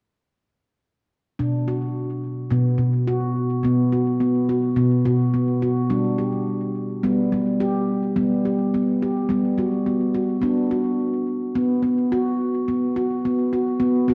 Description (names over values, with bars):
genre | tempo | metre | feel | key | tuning
world meditative, meditative tuned percussion | 106 BPM | 4/4 | swing 56% on 16ths | B minor | A4 = 441 Hz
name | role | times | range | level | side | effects
handpan | solo | 1.4-14.1 s | B2 to G4 | -22 LUFS | equal | tape echo
room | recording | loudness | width
wet plate reverb, RT60 3.3 s | dark, warm production | -22 LUFS | mono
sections
1.4-14.1 A section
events
none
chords
1.4 B5; 5.9 G; 10.4 B5